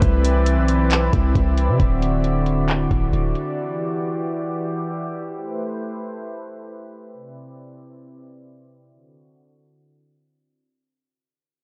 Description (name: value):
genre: hip hop, atmospheric cloud-rap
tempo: 135 BPM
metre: 4/4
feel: half-time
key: unclear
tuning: A4 = 442 Hz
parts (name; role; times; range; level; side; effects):
- warm analog pad; sustained chords; 0.0-10.7 s; C3 to D5; -26 LUFS; equal; chorus, sidechain pumping
- long sustained 808-style bass; bass; 0.0-3.3 s; D1 to C3; -22 LUFS; equal; none
- smooth R&B drum kit; drums; 0.0-3.5 s; handclaps, hi-hat, kick drum; -24 LUFS; equal; none
room: little or no reverb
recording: low-pass filter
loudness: -21 LUFS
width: mono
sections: 0.0-10.7 A section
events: fade-out 0.0-10.7; filter sweep 0.0-10.7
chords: 0.0 Cmaj7; 1.8 D7; 3.6 Em9; 5.4 Am9; 7.1 Cmaj7; 8.9 D7